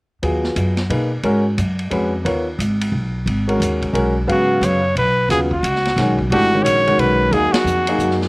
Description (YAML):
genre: modal jazz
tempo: 178 BPM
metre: 3/4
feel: swing 62% on 8ths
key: G# dorian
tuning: A4 = 440 Hz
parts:
  - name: clear upright piano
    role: accompaniment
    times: 0.2-8.3 s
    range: C#3 to E#5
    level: -19 LUFS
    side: equal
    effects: slapback echo
  - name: upright bass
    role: bass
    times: 0.2-8.3 s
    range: G#1 to B2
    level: -20 LUFS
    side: equal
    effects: none
  - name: vintage drum kit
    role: drums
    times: 0.2-8.3 s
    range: hi-hat, kick drum, ride cymbal, snare drum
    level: -27 LUFS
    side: equal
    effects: none
  - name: clear trumpet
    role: melody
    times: 4.3-8.2 s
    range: F#4 to C#5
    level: -17 LUFS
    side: equal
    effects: none
room: little or no reverb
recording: recorded outdoors, with no room sound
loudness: -15 LUFS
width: side -24 dB against mid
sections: 0.2-4.3 A section; 4.3-8.3 B section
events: band accent 7.5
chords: 0.2 G#m7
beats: | 0.22 0.56 0.90 | 1.24 1.58 1.92 | 2.25 2.59 2.93 | 3.27 3.61 3.94 | 4.28 4.62 4.96 | 5.29 5.63 5.97 | 6.31 6.64 6.98 | 7.32 7.65 7.99